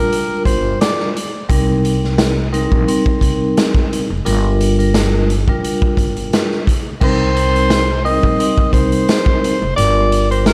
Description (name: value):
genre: hip hop, boom-bap hip-hop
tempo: 87 BPM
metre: 4/4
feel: swing 55% on 16ths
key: C minor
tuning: A4 = 440 Hz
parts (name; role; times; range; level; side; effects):
- mellow tenor saxophone; melody; 0.0-1.1, 7.0-10.5 s; Bb4 to Eb5; -21 LUFS; equal; high-pass filter, low-pass filter, delay
- vibraphone with soft mallets; accompaniment; 0.0-10.5 s; G3 to Bb4; -21 LUFS; equal; cassette tape, high-pass filter, low-pass filter
- upright bass; bass; 0.0-10.5 s; F1 to C2; -21 LUFS; equal; none
- raw garage drum kit; drums; 0.1-10.5 s; crash cymbal, hi-hat, kick drum, snare drum; -20 LUFS; equal; none
room: little or no reverb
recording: vinyl crackle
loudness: -15 LUFS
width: mono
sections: 0.0-7.0 A section; 7.0-10.5 A section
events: none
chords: 0.0 Gm7; 1.5 Cm7; 4.3 Gm7; 7.0 Cm7; 9.8 Gm7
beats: 0.12 0.81 | 1.50 2.19 2.88 3.57 | 4.26 4.95 5.63 6.33 | 7.01 7.70 8.39 9.08 | 9.77 10.46